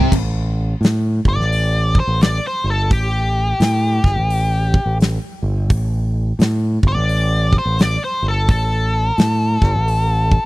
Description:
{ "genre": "blues rock power trio and southern rock", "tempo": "86 BPM", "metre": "4/4", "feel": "swing 62% on 8ths", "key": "unclear", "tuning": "A4 = 440 Hz", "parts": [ { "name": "growling fingered electric bass", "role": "bass", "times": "0.0-10.4 s", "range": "G1 to A2", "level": "-18 LUFS", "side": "equal", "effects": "overdrive" }, { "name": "huge arena drum kit", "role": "drums", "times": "0.1-10.4 s", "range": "crash cymbal, hi-hat, kick drum, snare drum", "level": "-16 LUFS", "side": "equal", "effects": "none" }, { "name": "octave-fuzz lead guitar", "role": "melody", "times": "1.3-10.5 s", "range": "G4 to D5", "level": "-20 LUFS", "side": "left 1 dB", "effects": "wah, distortion" } ], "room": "little or no reverb", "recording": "dry, close 1970s-style studio recording", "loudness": "-15 LUFS", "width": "side -18 dB against mid", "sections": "0.1-10.5 A section", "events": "lead electric guitar solo 0.1-10.5", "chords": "0.1 Gsus2" }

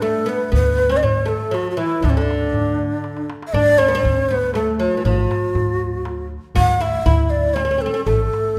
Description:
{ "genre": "Arabic maqam ensemble", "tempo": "119 BPM", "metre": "3/4", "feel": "straight", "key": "D maqam rast", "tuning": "A4 = 440 Hz", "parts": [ { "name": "breathy bright low ney", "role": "melody", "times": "0.0-8.6 s", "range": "C#4-49c to F5+48c", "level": "-22 LUFS", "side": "equal", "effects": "none" }, { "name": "oud", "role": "second line", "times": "0.0-8.6 s", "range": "D3 to F#4-50c", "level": "-26 LUFS", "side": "equal", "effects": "none" }, { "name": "darbuka", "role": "percussion", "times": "0.0-8.4 s", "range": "none", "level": "-26 LUFS", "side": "equal", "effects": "none" }, { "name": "upright bass", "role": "bass", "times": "0.5-8.6 s", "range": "A1 to D2", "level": "-24 LUFS", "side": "equal", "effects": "none" } ], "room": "wet recital hall reverb, RT60 1.7 s", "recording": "none", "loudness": "-19 LUFS", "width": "mono", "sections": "0.0-3.5 A section; 3.5-8.6 B section", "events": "drum fill 3.0-3.5", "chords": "none" }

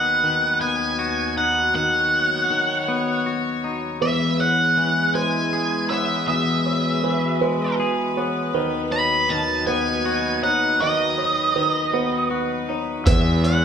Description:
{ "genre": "post-rock", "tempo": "53 BPM (dotted quarters)", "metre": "6/8", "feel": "straight", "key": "unclear", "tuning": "A4 = 439 Hz", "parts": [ { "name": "octave-fuzz lead guitar", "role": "melody", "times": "0.0-13.6 s", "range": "D#5 to B5", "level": "-21 LUFS", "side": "right 1 dB", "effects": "distortion" }, { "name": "clear studio string section", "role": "sustained chords", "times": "0.0-13.6 s", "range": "D#2 to C#5", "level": "-29 LUFS", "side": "equal", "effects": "none" }, { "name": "twangy electric guitar", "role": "arpeggios", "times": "0.0-13.6 s", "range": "E2 to G#4", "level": "-24 LUFS", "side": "left 3 dB", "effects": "none" }, { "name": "felt-muted upright piano", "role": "arpeggios", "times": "4.0-13.6 s", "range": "B4 to D#6", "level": "-28 LUFS", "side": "right 8 dB", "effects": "none" }, { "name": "fuzz fingered electric bass", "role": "bass", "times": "13.1-13.6 s", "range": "E2", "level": "-20 LUFS", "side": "equal", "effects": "overdrive" }, { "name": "trip hop sampler-style drum kit", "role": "drums", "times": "13.1-13.6 s", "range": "hi-hat, kick drum", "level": "-19 LUFS", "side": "right 1 dB", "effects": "overdrive" } ], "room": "wet recital hall reverb, RT60 1.4 s", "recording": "recorded in a church or concert hall", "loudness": "-18 LUFS", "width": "side -7 dB against mid", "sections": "0.0-13.6 A section", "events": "none", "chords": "0.0 B/D#; 4.0 E; 8.5 B/D#; 13.1 E" }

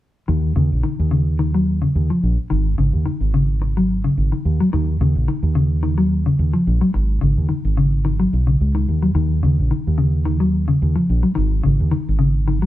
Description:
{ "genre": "afrobeat", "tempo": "108 BPM", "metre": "4/4", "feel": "swing 54% on 16ths", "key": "Eb minor", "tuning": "A4 = 440 Hz", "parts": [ { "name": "mellow electric guitar", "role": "arpeggios", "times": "0.3-12.7 s", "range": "Db3 to Gb3", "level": "-19 LUFS", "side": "left 2 dB", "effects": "none" }, { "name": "fingered electric bass", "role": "bass", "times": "0.3-12.7 s", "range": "Ab1 to Eb2", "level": "-18 LUFS", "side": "right 1 dB", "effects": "none" } ], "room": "wet studio reverb, RT60 0.9 s", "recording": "band playing live in one room", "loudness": "-16 LUFS", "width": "side -14 dB against mid", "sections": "0.3-12.7 A section", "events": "none", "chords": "0.3 Eb7(no3); 2.5 Ab7sus4; 4.7 Ebm7; 6.9 Ab7(no3); 9.2 Ebm7; 11.4 Absus4" }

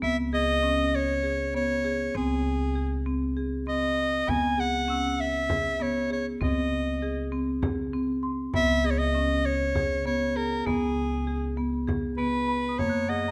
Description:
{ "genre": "contemporary instrumental, chamber music in an uneven meter", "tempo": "198 BPM (eighths)", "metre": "7/8", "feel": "straight", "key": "unclear", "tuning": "A4 = 436 Hz", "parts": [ { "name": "bright soprano saxophone", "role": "melody", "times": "0.0-13.3 s", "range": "G#4 to G#5", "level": "-30 LUFS", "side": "equal", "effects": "none" }, { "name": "marimba with hard mallets", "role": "arpeggios", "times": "0.0-13.3 s", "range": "A#3 to G#4", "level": "-31 LUFS", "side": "equal", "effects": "none" }, { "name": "upright bass", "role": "bass", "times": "0.0-13.3 s", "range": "C#2 to F#2", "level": "-34 LUFS", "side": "equal", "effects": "none" }, { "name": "frame drum", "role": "percussion", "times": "4.3-13.1 s", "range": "none", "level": "-36 LUFS", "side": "equal", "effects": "none" }, { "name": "celesta", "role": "texture", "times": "4.9-8.8, 12.5-13.3 s", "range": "F#5 to F#6", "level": "-40 LUFS", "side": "equal", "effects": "none" } ], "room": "moderate recital hall reverb, RT60 1.3 s", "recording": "none", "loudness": "-27 LUFS", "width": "mono", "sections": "0.0-12.8 A section", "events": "none", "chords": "0.0 C#5; 2.2 G#/C#; 4.3 C#m7; 6.4 G#/C#; 8.5 C#5; 12.8 F#add9" }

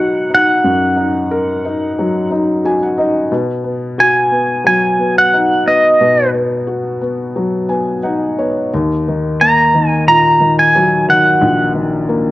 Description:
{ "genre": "acoustic folk-pop ballad", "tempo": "89 BPM", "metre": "4/4", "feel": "straight", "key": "unclear", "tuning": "A4 = 440 Hz", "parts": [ { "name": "pedal steel guitar", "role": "melody", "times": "0.0-11.7 s", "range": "D#5 to A#5", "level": "-11 LUFS", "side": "right 1 dB", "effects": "cassette tape" }, { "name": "felt-muted upright piano", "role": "accompaniment", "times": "0.0-12.3 s", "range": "A#1 to G#5", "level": "-15 LUFS", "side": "left 1 dB", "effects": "cassette tape" } ], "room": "moderate spring reverb, RT60 1.4 s, studio ambience", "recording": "home recording on cassette", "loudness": "-11 LUFS", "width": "side -17 dB against mid", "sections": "0.0-12.3 A section", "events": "none", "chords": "0.0 Bmaj7; 3.3 G#m7/B; 8.7 D#m" }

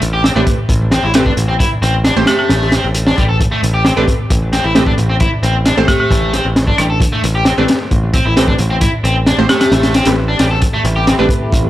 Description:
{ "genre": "breakbeat, breaks", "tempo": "133 BPM", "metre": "4/4", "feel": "straight", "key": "A minor", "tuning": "A4 = 442 Hz", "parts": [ { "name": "folk marimba with hard mallets", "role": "melody", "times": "0.0-2.5, 5.9-9.7 s", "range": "D4 to G4", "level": "-19 LUFS", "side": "equal", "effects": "telephone sound, vintage 12-bit sampler grit, analog delay" }, { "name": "orchestra-hit-like synth stab", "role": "stabs", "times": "0.0-11.3 s", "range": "A3 to C5", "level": "-18 LUFS", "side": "right 1 dB", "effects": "built-in reverb, analog delay" }, { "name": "picked electric bass", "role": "bass", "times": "0.0-11.7 s", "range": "A1", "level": "-16 LUFS", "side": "equal", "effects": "none" }, { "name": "crunchy breakbeat drum kit", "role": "drums", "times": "0.0-11.6 s", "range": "hi-hat, kick drum, snare drum", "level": "-15 LUFS", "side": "equal", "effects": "none" }, { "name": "overdriven electric guitar", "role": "riff", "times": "0.1-11.2 s", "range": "G3 to A4", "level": "-18 LUFS", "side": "left 1 dB", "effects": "analog delay" }, { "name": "dark analog pad", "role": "sustained chords", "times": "10.7-11.7 s", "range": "C4 to B5", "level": "-21 LUFS", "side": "equal", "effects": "chorus, sidechain pumping" } ], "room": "light reverb, small room reverb", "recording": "dry, gritty hardware recording", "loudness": "-11 LUFS", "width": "side -14 dB against mid", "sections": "0.0-11.7 A section", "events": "none", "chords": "0.0 Am9" }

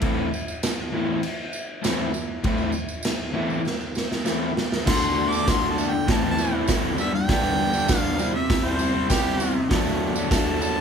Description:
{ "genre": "garage rock duo or trio", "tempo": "99 BPM", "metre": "4/4", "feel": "straight", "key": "A minor", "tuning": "A4 = 440 Hz", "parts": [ { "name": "crunchy overdriven guitar", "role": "riff", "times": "0.0-10.8 s", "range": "G2 to A4", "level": "-24 LUFS", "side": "left 1 dB", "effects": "none" }, { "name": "raw garage drum kit", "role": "drums", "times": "0.0-10.5 s", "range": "crash cymbal, hi-hat, kick drum, snare drum", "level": "-25 LUFS", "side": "right 1 dB", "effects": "none" }, { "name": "tambourine", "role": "percussion", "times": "0.3-10.8 s", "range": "none", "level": "-36 LUFS", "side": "right 5 dB", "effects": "none" }, { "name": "clear harmonica", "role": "melody", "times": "4.9-10.8 s", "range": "G4 to D6", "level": "-26 LUFS", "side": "right 1 dB", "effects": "overdrive" } ], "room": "moderate large studio reverb, RT60 0.9 s", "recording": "band playing live in one room", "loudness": "-21 LUFS", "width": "side -7 dB against mid", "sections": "0.0-4.9 A section; 4.9-10.8 B section", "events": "drum fill 3.7-4.9", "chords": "0.0 Am; 4.9 D; 6.1 Am; 7.0 G; 8.2 C; 9.7 D" }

